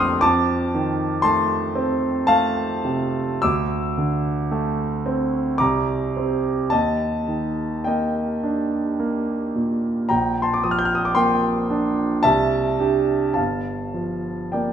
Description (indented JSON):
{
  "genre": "classical, impressionist solo piano",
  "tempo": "55 BPM",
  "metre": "3/4",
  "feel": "uneven beats, rubato",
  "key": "unclear",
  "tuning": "A4 = 441 Hz",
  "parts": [
    { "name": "clear concert grand piano", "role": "solo", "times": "0.0-14.7 s", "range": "G1 to C7", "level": "-19 LUFS", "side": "right 1 dB", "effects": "none" }
  ],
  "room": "moderate recital hall reverb, RT60 1.6 s",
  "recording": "none",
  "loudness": "-19 LUFS",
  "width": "side -8 dB against mid",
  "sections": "0.0-14.7 A section",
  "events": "none",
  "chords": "0.2 F7; 3.4 Dsus2; 5.6 Csus2; 6.7 Ebmaj7; 10.1 Bb69; 12.2 Cadd9; 13.4 Gm7"
}